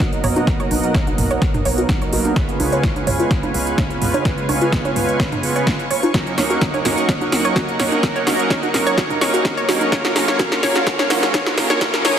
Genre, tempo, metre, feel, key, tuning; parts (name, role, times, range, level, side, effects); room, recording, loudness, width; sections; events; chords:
progressive house; 127 BPM; 4/4; straight; A4 = 439 Hz
lush unison pad; sustained chords; 0.0-12.2 s; A#4 to D#6; -26 LUFS; right 1 dB; chorus, sidechain pumping
analog pluck; arpeggios; 0.0-12.1 s; E#4 to C#5; -23 LUFS; equal; chorus, sidechain pumping, dub echo
soft supersaw; stabs; 0.0-12.1 s; B2 to B4; -22 LUFS; right 2 dB; sidechain pumping, low-pass filter, dub echo
tight sequencer bass; bass; 0.0-12.2 s; F#1 to D#2; -30 LUFS; left 1 dB; sidechain pumping
big-room dance drum kit; drums; 0.0-12.1 s; hi-hat, snare drum; -22 LUFS; equal; overdrive, sidechain pumping on hats
electronic kick drum; drums; 0.0-11.9 s; -22 LUFS; equal; overdrive
electronic congas and toms; percussion; 0.0-12.1 s; -26 LUFS; right 3 dB; sidechain pumping on perc, soft clipping on snare, sidechain pumping on snare, sidechain pumping on toms
riser; sound effects; 9.6-12.2 s; barely audible
wet recital hall reverb, RT60 1.4 s, digital ambience; dense, heavily limited modern master, high-pass filter; -15 LUFS; side -8 dB against mid
0.0-12.2 A section
build-up 0.0-12.2; drum fill 0.0-12.2; filter sweep on synth pluck 0.0-12.2; filter sweep on supersaw synth 0.0-12.2; filter sweep 0.0-12.2
0.0 Bmaj7; 2.4 C#7; 6.1 D#m7; 9.9 F#maj7